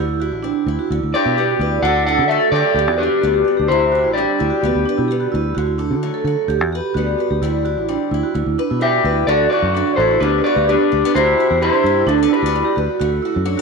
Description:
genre	highlife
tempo	129 BPM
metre	4/4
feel	straight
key	unclear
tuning	A4 = 440 Hz
part	picked old ladder-braced acoustic guitar	accompaniment	0.0-13.6 s	D3 to B4	-27 LUFS	left 11 dB	none
part	vibraphone with medium mallets	arpeggios	0.0-13.6 s	B3 to A4	-21 LUFS	right 10 dB	slapback echo
part	fingered electric bass	bass	0.0-13.5 s	A1 to D3	-22 LUFS	left 1 dB	none
part	electric guitar at the edge of break-up	melody	1.1-5.3, 8.8-12.7 s	D4 to F#5	-16 LUFS	left 1 dB	wide subtle chorus
part	warm trumpet	second line	1.1-5.3, 8.8-12.8 s	D4 to A4	-24 LUFS	left 9 dB	none
room	wet echo chamber reverb, RT60 1.9 s, small room ambience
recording	1960s-style stereo with parts hard left and right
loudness	-15 LUFS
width	side -4 dB against mid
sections	0.0-9.3 A section; 9.3-13.6 B section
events	none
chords	0.0 Cadd9; 0.9 G/D; 1.8 D; 2.8 G/D; 3.7 Cadd9; 4.6 G/D; 5.6 D; 6.5 G/D; 7.4 Cadd9; 8.4 G/D; 9.3 D; 10.2 G/D; 11.1 Cadd9/D; 12.1 G/D; 13.0 D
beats	0.45 0.91 1.38 | 1.84 2.31 2.77 3.23 | 3.70 4.17 4.63 5.10 | 5.56 6.03 6.49 6.96 | 7.42 7.89 8.35 8.82 | 9.28 9.75 10.21 10.68 | 11.14 11.61 12.07 12.54 | 13.00 13.47

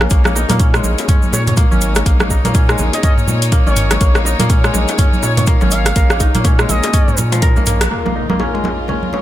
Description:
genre	afro house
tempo	123 BPM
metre	4/4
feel	swing 59% on 16ths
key	Bb minor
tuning	A4 = 441 Hz
part	warm chamber string section	sustained chords	0.0-9.2 s	Bb3 to Db5	-24 LUFS	left 2 dB	sidechain pumping
part	kora	arpeggios	0.0-9.2 s	F3 to Bb4	-21 LUFS	equal	sidechain pumping, low-pass filter, dub echo
part	round analog bass	bass	0.0-7.9 s	Ab1 to Bb2	-18 LUFS	equal	sidechain pumping
part	afro-pop drum kit	drums	0.0-7.9 s	hi-hat, rim click, toms	-20 LUFS	equal	low-pass filter on cymbals, low-pass filter on snare, low-pass filter on toms, low-pass filter on hats
part	congas	percussion	0.0-9.2 s	none	-23 LUFS	right 3 dB	none
part	electronic kick drum	drums	0.1-7.5 s	none	-13 LUFS	equal	none
part	cabasa	percussion	0.1-7.9 s	none	-25 LUFS	right 4 dB	none
part	bongos	percussion	0.2-9.2 s	none	-26 LUFS	left 5 dB	none
part	expressive portamento lead	melody	1.3-9.2 s	Db5 to F5	-25 LUFS	right 1 dB	chorus, dub echo
part	impact	sound effects	7.9-9.2 s	none	-24 LUFS	equal	none
room	little or no reverb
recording	none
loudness	-11 LUFS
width	side -13 dB against mid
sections	0.0-7.9 A section; 7.9-9.2 B section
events	band accent 7.8; impact 7.9-9.2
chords	0.0 Bbm7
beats	| 0.11 0.59 1.08 1.57 | 2.06 2.55 3.03 3.52 | 4.01 4.50 4.99 5.47 | 5.96 6.45 6.94 7.42 | 7.91 8.40 8.89

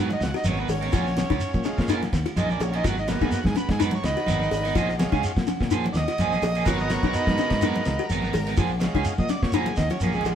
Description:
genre	afrobeat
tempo	126 BPM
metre	4/4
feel	swing 54% on 16ths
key	unclear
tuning	A4 = 440 Hz
part	overdriven combo organ	accompaniment	0.0-10.3 s	E#3 to D#5	-28 LUFS	right 2 dB	none
part	buzzing kalimba	arpeggios	0.0-10.3 s	C#4 to G#4	-29 LUFS	left 5 dB	none
part	electric guitar at the edge of break-up	stabs	0.0-10.3 s	E#3 to A#4	-31 LUFS	right 6 dB	slapback echo
part	fingered electric bass	bass	0.0-10.3 s	G#1 to A#2	-28 LUFS	equal	none
part	congas	percussion	0.1-10.3 s	none	-32 LUFS	equal	none
part	shekere	percussion	0.1-10.3 s	none	-32 LUFS	right 1 dB	none
part	damped 70s drum kit	drums	0.2-10.3 s	hi-hat, kick drum, ride cymbal, snare drum	-29 LUFS	equal	none
room	moderate stone room reverb, RT60 1.0 s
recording	band playing live in one room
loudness	-21 LUFS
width	side -9 dB against mid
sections	0.0-10.3 A section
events	transistor combo organ solo 0.0-10.3; drum fill 9.9-10.3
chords	0.0 G#m9; 0.9 A#m7; 2.8 G#m9; 4.8 A#m7; 6.7 G#m9; 8.6 A#m7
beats	0.45 | 0.93 1.41 1.89 2.37 | 2.84 3.32 3.80 4.28 | 4.76 5.23 5.71 6.19 | 6.67 7.15 7.62 8.10 | 8.58 9.06 9.54 10.01

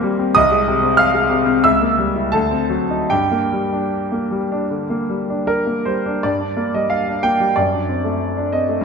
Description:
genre	classical, romantic character piece for solo piano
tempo	73-97 BPM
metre	4/4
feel	rubato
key	G minor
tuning	A4 = 439 Hz
part	clear concert grand piano	solo	0.0-8.8 s	C2 to G6	-16 LUFS	equal	none
room	wet scoring stage reverb, RT60 1.6 s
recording	minimal, uncompressed stereo recording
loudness	-16 LUFS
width	side -5 dB against mid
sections	0.0-6.2 A section; 6.2-8.8 B section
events	none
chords	0.4 Ab/C; 1.6 C#dim7; 2.3 D7b9; 3.1 Gm; 7.6 D7/F#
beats	| 0.35 0.98 1.64 2.32 | 3.10 3.92 4.70 5.47 | 6.23 6.90 7.56 8.20 | 8.83

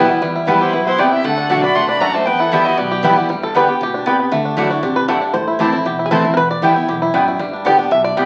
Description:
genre	bluegrass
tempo	234 BPM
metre	4/4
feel	straight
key	E minor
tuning	A4 = 440 Hz
part	bluegrass banjo	melody	0.0-8.3 s	G3 to E5	-20 LUFS	equal	none
part	clear fiddle	melody	0.0-3.2 s	B4 to C6	-23 LUFS	equal	none
part	clear fiddle	second line	0.0-3.2 s	E4 to F#5	-26 LUFS	equal	none
part	picked steel-string acoustic guitar	accompaniment	0.0-8.3 s	E2 to G4	-21 LUFS	equal	none
part	mandolin	stabs	0.0-8.3 s	A3 to A5	-20 LUFS	equal	none
part	upright bass	bass	0.0-8.3 s	E1 to G2	-34 LUFS	equal	none
room	wet large studio reverb, RT60 0.8 s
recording	very old 78 rpm record, vinyl crackle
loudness	-16 LUFS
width	mono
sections	0.0-3.3 A section; 3.3-8.3 B section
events	five-string banjo solo 3.3-8.3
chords	0.0 Em; 1.2 D; 2.3 Em; 3.3 G; 4.3 Dadd9; 5.3 Am; 6.4 Em; 7.4 G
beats	| 0.22 0.48 0.73 0.99 | 1.25 1.50 1.76 2.02 | 2.27 2.53 2.78 3.04 | 3.30 3.55 3.81 4.07 | 4.32 4.58 4.83 5.09 | 5.35 5.60 5.86 6.12 | 6.37 6.63 6.89 7.14 | 7.40 7.66 7.91 8.17

